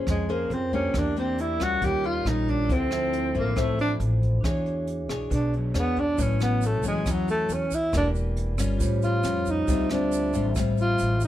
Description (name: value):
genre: bossa nova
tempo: 137 BPM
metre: 4/4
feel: straight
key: unclear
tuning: A4 = 438 Hz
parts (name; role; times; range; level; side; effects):
- nylon-string guitar; accompaniment; 0.0-11.3 s; A2 to C#5; -30 LUFS; left 4 dB; none
- vibraphone with medium hard mallets; accompaniment; 0.0-11.3 s; Db4 to E5; -35 LUFS; right 4 dB; none
- upright bass; bass; 0.0-11.3 s; E1 to F2; -27 LUFS; equal; none
- breathy tenor saxophone; melody; 0.1-11.3 s; F#3 to G4; -26 LUFS; right 1 dB; none
- jazz brush drum kit; drums; 0.1-11.3 s; hi-hat, kick drum, rim click; -32 LUFS; equal; none
- tube shaker; percussion; 6.2-11.3 s; none; -42 LUFS; right 7 dB; none
room: light reverb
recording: none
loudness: -22 LUFS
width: side -13 dB against mid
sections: 0.0-11.3 A section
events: tenor saxophone solo 0.0-11.3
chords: 0.0 Bbm9; 0.9 Em7b5; 1.8 Eb9; 2.7 Dm9; 4.4 E13; 6.2 A69; 7.9 Em7b5; 8.8 A7alt; 9.7 Dm11